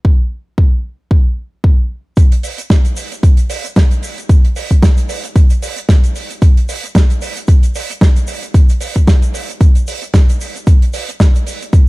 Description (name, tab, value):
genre	nu-disco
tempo	113 BPM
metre	4/4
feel	swing 56% on 16ths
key	none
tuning	none
part	electronic kick drum	drums	0.0-11.8 s	none	-9 LUFS	equal	studio reverb
part	damped 70s drum kit	drums	2.2-11.9 s	hi-hat, shaker, snare drum	-19 LUFS	right 2 dB	studio reverb
room	little or no reverb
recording	dark, warm production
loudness	-10 LUFS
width	side -22 dB against mid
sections	0.0-2.2 A section; 2.2-11.9 B section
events	drop 2.2-11.9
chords	none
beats	| 0.05 0.58 1.11 1.64 | 2.17 2.70 3.23 3.77 | 4.30 4.83 5.36 5.89 | 6.42 6.95 7.48 8.01 | 8.54 9.07 9.61 10.14 | 10.67 11.20 11.73